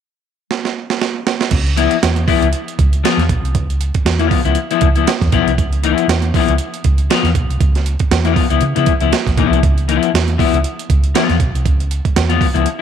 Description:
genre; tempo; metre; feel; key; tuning
funk; 118 BPM; 4/4; swing 56% on 16ths; unclear; A4 = 440 Hz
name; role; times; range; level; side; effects
breakbeat sampler-style drum kit; drums; 0.5-12.8 s; crash cymbal, hi-hat, kick drum, snare drum; -17 LUFS; right 4 dB; none
hollow-body short-scale fingered electric bass; bass; 1.5-12.6 s; Bb1 to Db3; -16 LUFS; right 1 dB; none
electric guitar at the edge of break-up; accompaniment; 1.8-12.8 s; F3 to F4; -17 LUFS; left 12 dB; none
room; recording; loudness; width
light reverb, digital ambience; 1960s-style stereo; -13 LUFS; side -8 dB against mid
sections
0.0-1.5 A section; 1.5-12.8 B section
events
drum fill 0.5-1.5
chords
0.0 N.C.; 1.5 Db7#9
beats
0.50 1.01 | 1.52 2.02 2.53 3.04 | 3.55 4.06 4.57 5.07 | 5.58 6.09 6.59 7.10 | 7.61 8.11 8.62 9.12 | 9.63 10.13 10.64 11.14 | 11.65 12.15 12.65

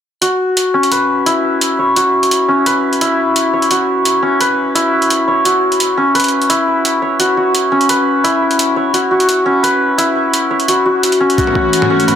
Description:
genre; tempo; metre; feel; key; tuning
half-time drum and bass; 172 BPM; 4/4; half-time; unclear; A4 = 440 Hz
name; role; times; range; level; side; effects
santur; arpeggios; 0.2-12.2 s; C#4 to C#5; -12 LUFS; left 1 dB; vintage 12-bit sampler grit, low-pass filter, tape echo
boom bap sampler-style drum kit; drums; 0.2-12.2 s; hi-hat, toms; -18 LUFS; right 1 dB; none
warm chamber string section; sustained chords; 11.4-12.2 s; E3 to F#4; -17 LUFS; right 2 dB; sidechain pumping
electronic kick drum; drums; 11.4-11.6 s; none; -19 LUFS; right 2 dB; none
room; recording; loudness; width
moderate echo chamber reverb, RT60 2.0 s; none; -11 LUFS; side -9 dB against mid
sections
0.2-12.2 A section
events
none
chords
0.2 Bsus2; 11.4 F#m7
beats
| 0.22 0.57 0.92 1.26 | 1.61 1.96 2.31 2.66 | 3.01 3.36 3.71 4.06 | 4.41 4.75 5.10 5.45 | 5.80 6.15 6.50 6.85 | 7.20 7.54 7.89 8.24 | 8.59 8.94 9.29 9.64 | 9.99 10.34 10.68 11.03 | 11.38 11.73 12.08

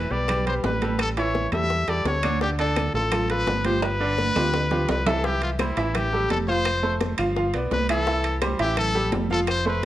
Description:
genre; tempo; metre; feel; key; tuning
latin, salsa; 170 BPM; 4/4; straight; unclear; A4 = 440 Hz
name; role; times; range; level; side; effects
bright trumpet; melody; 0.0-9.9 s; E4 to E5; -26 LUFS; left 2 dB; none
bright baby grand piano; accompaniment; 0.0-9.9 s; D3 to F5; -26 LUFS; right 2 dB; none
fingered electric bass; bass; 0.0-9.9 s; F1 to E2; -27 LUFS; equal; none
bongos; percussion; 0.1-9.8 s; none; -34 LUFS; left 6 dB; none
congas; percussion; 0.1-9.8 s; none; -32 LUFS; right 2 dB; none
claves; percussion; 0.3-9.7 s; none; -40 LUFS; left 5 dB; none
timbales; percussion; 0.3-9.7 s; none; -32 LUFS; right 4 dB; none
room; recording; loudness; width
moderate large studio reverb, RT60 1.1 s; worn, warbling old tape, cassette tape, warbly pitch drift; -21 LUFS; side -13 dB against mid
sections
0.0-5.2 A section; 5.2-9.9 B section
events
drum fill 3.8-5.2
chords
0.0 Em7 (rootless); 1.0 A7; 2.4 Dmadd11; 3.8 G7; 5.2 C; 5.9 A5; 6.7 F; 7.4 G7; 8.1 C; 8.8 A5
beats
0.28 0.64 | 0.99 1.35 1.70 2.05 | 2.41 2.76 3.12 3.47 | 3.82 4.18 4.53 4.88 | 5.24 5.59 5.95 6.30 | 6.65 7.01 7.36 7.71 | 8.07 8.42 8.78 9.13 | 9.48 9.84

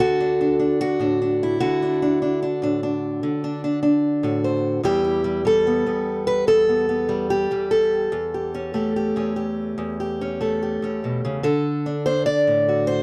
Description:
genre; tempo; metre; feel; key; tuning
folk, solo fingerstyle acoustic guitar; 74 BPM; 4/4; straight; unclear; A4 = 440 Hz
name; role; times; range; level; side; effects
fingerpicked acoustic archtop guitar; solo; 0.0-13.0 s; E2 to D5; -22 LUFS; equal; none
room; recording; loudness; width
light reverb; dark, warm production; -22 LUFS; mono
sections
0.0-13.0 A section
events
none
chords
0.0 D; 4.9 Em; 8.1 A7/E; 11.4 D7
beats
0.01 0.82 | 1.63 2.44 3.25 4.05 | 4.86 5.67 6.48 7.30 | 8.12 8.94 9.77 10.60 | 11.43 12.25

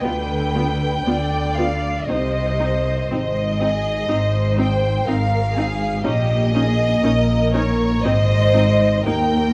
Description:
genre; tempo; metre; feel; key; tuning
classical, slow romantic movement for string orchestra; 60 BPM; 3/4; uneven beats, rubato; unclear; A4 = 439 Hz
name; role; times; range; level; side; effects
warm studio violin section; melody; 0.0-9.5 s; C5 to G5; -25 LUFS; equal; none
warm studio violin section; second line; 0.0-9.5 s; G4 to Eb5; -28 LUFS; equal; none
rich studio viola section; accompaniment; 0.0-9.1 s; Bb3 to F4; -28 LUFS; equal; none
clear studio cello section; bass; 0.0-9.5 s; Eb2 to D3; -24 LUFS; equal; none
clear studio double bass section; bass; 0.0-9.5 s; Ab1 to Eb2; -26 LUFS; equal; none
room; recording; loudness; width
light reverb; close, detailed microphones, vinyl crackle; -19 LUFS; mono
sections
0.0-9.5 A section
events
none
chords
0.0 G7/D; 2.1 Cm; 3.1 Ab; 6.0 Eb5/Bb; 8.0 Ab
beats
| 0.02 1.06 2.08 | 3.10 4.09 5.07 | 6.04 7.02 8.03 | 9.05

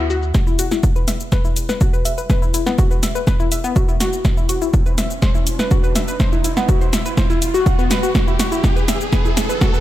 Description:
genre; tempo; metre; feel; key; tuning
melodic techno; 123 BPM; 4/4; straight; unclear; A4 = 444 Hz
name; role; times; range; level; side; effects
analog pluck; arpeggios; 0.0-9.8 s; B3 to F#5; -22 LUFS; left 2 dB; chorus, sidechain pumping, ping-pong delay
round analog bass; bass; 0.0-9.6 s; A1 to E2; -31 LUFS; equal; none
house drum kit; drums; 0.1-9.8 s; hi-hat, shaker, snare drum; -23 LUFS; equal; low-pass filter on snare, studio reverb, low-pass filter on perc, low-pass filter on hats
electronic kick drum; drums; 0.3-9.7 s; none; -17 LUFS; equal; studio reverb
riser; sound effects; 1.6-9.8 s; none; -28 LUFS; right 1 dB; none
room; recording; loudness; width
light reverb, digital ambience; none; -15 LUFS; side -14 dB against mid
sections
0.3-9.8 A section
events
build-up 0.3-9.8; drum fill 0.3-9.8; riser 1.6-9.8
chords
0.3 E5; 4.2 D; 8.2 E5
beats
| 0.35 0.83 1.32 1.81 | 2.30 2.79 3.27 3.76 | 4.25 4.74 5.22 5.71 | 6.20 6.69 7.17 7.66 | 8.15 8.64 9.13 9.61

